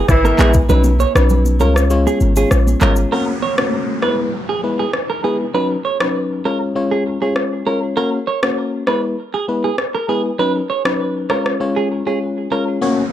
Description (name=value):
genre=afrobeats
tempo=99 BPM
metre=4/4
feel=straight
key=unclear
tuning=A4 = 435 Hz
part: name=clean electric guitar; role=riff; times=0.0-12.6 s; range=G#4 to C#5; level=-21 LUFS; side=right 5 dB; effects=wide subtle chorus, tape echo
part: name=warm 808-style bass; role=bass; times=0.0-3.1 s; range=G#1 to C#2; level=-14 LUFS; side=equal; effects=none
part: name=mellow horn section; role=second line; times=0.1-0.5 s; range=E3 to E4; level=-21 LUFS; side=equal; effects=tape echo
part: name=afro-pop drum kit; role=drums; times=0.1-11.6 s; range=handclaps, kick drum, rim click, shaker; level=-19 LUFS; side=equal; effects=none
part: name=congas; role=percussion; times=0.2-3.0 s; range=none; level=-24 LUFS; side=right 5 dB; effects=none
part: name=FM electric piano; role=accompaniment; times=0.4-13.0 s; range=F#3 to C#5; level=-19 LUFS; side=left 3 dB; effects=chorus
part: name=downlifter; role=sound effects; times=3.1-8.0, 12.8-13.1 s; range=none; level=-27 LUFS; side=right 1 dB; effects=none
room=little or no reverb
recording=dry, gritty hardware recording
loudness=-14 LUFS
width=side -11 dB against mid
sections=0.0-3.1 A section; 3.1-12.8 B section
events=kick muted 0.7-3.1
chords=0.0 E; 0.7 Badd9; 1.6 C#; 3.1 F#; 4.0 E; 5.5 Badd9; 6.5 C#; 8.0 F#; 8.9 E; 10.4 Badd9; 11.3 C#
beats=0.09 | 0.69 1.30 1.91 2.51 | 3.12 3.73 4.33 4.94 | 5.54 6.15 6.75 7.36 | 7.97 8.57 9.18 9.79 | 10.39 11.00 11.60 12.21 | 12.82